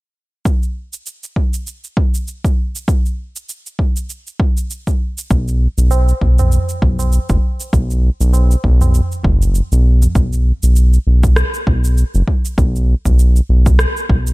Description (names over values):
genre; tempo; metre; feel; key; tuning
organic downtempo; 99 BPM; 4/4; swing 57% on 16ths; unclear; A4 = 438 Hz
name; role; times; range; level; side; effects
electronic kick drum; drums; 0.5-14.2 s; none; -16 LUFS; equal; none
electronic shaker and rim click; drums; 0.5-14.3 s; none; -24 LUFS; right 1 dB; overdrive
round analog bass; bass; 5.3-14.3 s; F#1 to B1; -12 LUFS; equal; tube saturation
tabla; percussion; 5.9-10.1 s; none; -21 LUFS; right 2 dB; none
room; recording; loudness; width
little or no reverb; dark, warm production; -13 LUFS; side -22 dB against mid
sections
0.5-10.2 A section; 10.2-14.3 B section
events
kick drops out 9.5-10.2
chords
none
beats
| 0.46 1.06 1.67 2.28 | 2.88 3.49 4.09 4.70 | 5.31 5.91 6.52 7.12 | 7.73 8.34 8.94 9.55 | 10.15 10.76 11.37 11.97 | 12.58 13.19 13.79